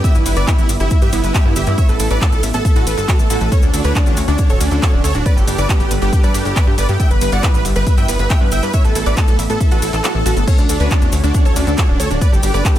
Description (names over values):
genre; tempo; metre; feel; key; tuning
uplifting trance; 138 BPM; 4/4; straight; D major; A4 = 436 Hz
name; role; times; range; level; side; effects
dense compressed supersaw; melody; 0.0-12.8 s; D4 to G5; -21 LUFS; right 2 dB; sidechain pumping, tape echo
supersaw stab; second line; 0.0-12.8 s; D4 to G5; -29 LUFS; right 2 dB; none
lush unison pad; sustained chords; 0.0-12.8 s; D3 to B4; -25 LUFS; right 1 dB; chorus, sidechain pumping
wide unison pluck; arpeggios; 0.0-12.8 s; B3 to E5; -27 LUFS; moving between left 9 dB and right 2 dB; auto-pan, sidechain pumping, tape echo
electronic kick drum; drums; 0.0-12.7 s; none; -14 LUFS; equal; none
techno drum kit; drums; 0.0-12.8 s; crash cymbal, handclaps, hi-hat, ride cymbal; -25 LUFS; right 1 dB; none
cabasa; percussion; 0.0-12.8 s; none; -29 LUFS; left 3 dB; none
plucky analog bass; bass; 0.1-12.8 s; D1 to A2; -18 LUFS; equal; sidechain pumping
room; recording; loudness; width
little or no reverb; none; -12 LUFS; side -12 dB against mid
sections
0.0-12.8 A section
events
kick drops out 10.0-10.5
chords
0.0 Em/G; 3.5 Dmaj7; 5.3 Gadd9; 7.0 Em/G; 10.5 Dmaj7; 12.2 Gadd9